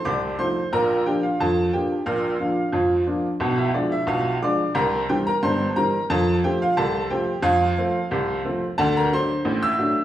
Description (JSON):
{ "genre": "ragtime piano", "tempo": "89 BPM", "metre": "2/4", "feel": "straight", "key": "F major", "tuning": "A4 = 444 Hz", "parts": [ { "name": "clear upright piano", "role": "solo", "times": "0.0-10.0 s", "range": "G1 to E6", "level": "-20 LUFS", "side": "equal", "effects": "none" } ], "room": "wet recital hall reverb, RT60 1.7 s", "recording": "recorded in a church or concert hall, small room ambience", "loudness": "-20 LUFS", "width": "side -12 dB against mid", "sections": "0.0-10.0 A section", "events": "none", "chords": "0.0 F7; 0.7 Bb; 3.4 Bdim7; 4.8 C7; 6.1 F; 8.8 D7", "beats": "0.06 | 0.73 1.40 | 2.07 2.74 | 3.42 4.09 | 4.76 5.43 | 6.10 6.77 | 7.44 8.11 | 8.78 9.45" }